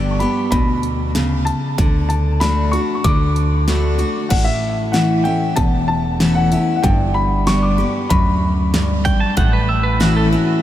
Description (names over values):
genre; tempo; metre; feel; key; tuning
honky-tonk and classic country; 95 BPM; 4/4; straight; unclear; A4 = 440 Hz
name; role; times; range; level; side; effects
picked steel-string acoustic guitar; accompaniment; 0.0-10.6 s; E2 to G4; -18 LUFS; left 1 dB; none
upright bass; bass; 0.0-10.3 s; E1 to D2; -20 LUFS; right 1 dB; none
warm upright piano; melody; 0.1-9.0 s; E5 to D6; -23 LUFS; left 1 dB; analog delay
big-room dance drum kit; drums; 0.2-10.2 s; crash cymbal, hi-hat, kick drum, snare drum; -22 LUFS; equal; none
pedal steel guitar; second line; 9.0-10.6 s; F#4 to A5; -22 LUFS; right 3 dB; none
room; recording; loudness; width
moderate huge ambient reverb, RT60 5.3 s; dreamy mix soaked in reverb; -14 LUFS; side -12 dB against mid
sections
0.0-4.3 A section; 4.3-10.6 B section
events
none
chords
0.0 G; 1.8 D; 4.3 A; 6.8 G; 9.4 A